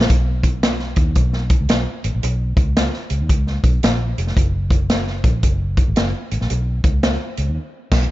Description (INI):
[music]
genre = uptempo 1960s-style soul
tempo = 112 BPM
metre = 4/4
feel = swing 64% on 8ths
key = B major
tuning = A4 = 440 Hz
[part]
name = vintage muted fingered electric bass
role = bass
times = 0.0-8.1 s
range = E#1 to D#2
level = -20 LUFS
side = equal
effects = none
[part]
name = swinging big-band drum kit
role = drums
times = 0.0-8.0 s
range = crash cymbal, hi-hat, kick drum, snare drum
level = -17 LUFS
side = equal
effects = none
[sound]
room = little or no reverb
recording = nothing above 7.5 kHz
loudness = -16 LUFS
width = side -16 dB against mid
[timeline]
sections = 0.0-8.1 A section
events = band accent 7.6-8.1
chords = none